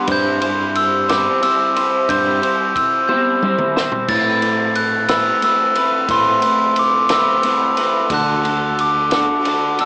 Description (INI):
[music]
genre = indie rock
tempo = 60 BPM (dotted quarters)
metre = 6/8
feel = straight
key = unclear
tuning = A4 = 441 Hz
[part]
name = electric guitar through a small old amp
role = riff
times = 0.0-9.9 s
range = A2 to C5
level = -19 LUFS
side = equal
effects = analog chorus
[part]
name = glockenspiel with hard plastic mallets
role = melody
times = 0.1-9.9 s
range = C6 to A6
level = -16 LUFS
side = equal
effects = slapback echo
[part]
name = tine electric piano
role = bass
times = 0.1-9.3 s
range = D2 to A2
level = -25 LUFS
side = equal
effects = medium stereo tremolo
[part]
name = compact cocktail drum kit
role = drums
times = 0.1-9.9 s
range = crash cymbal, kick drum, ride cymbal, snare drum, toms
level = -24 LUFS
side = equal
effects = none
[sound]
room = small room ambience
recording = worn, warbling old tape, cassette tape, warbly pitch drift, small speaker sound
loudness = -14 LUFS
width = side -26 dB against mid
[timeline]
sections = 0.0-9.9 A section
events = drum fill 3.1-4.1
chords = 0.1 C/G; 4.1 Amadd9; 8.1 D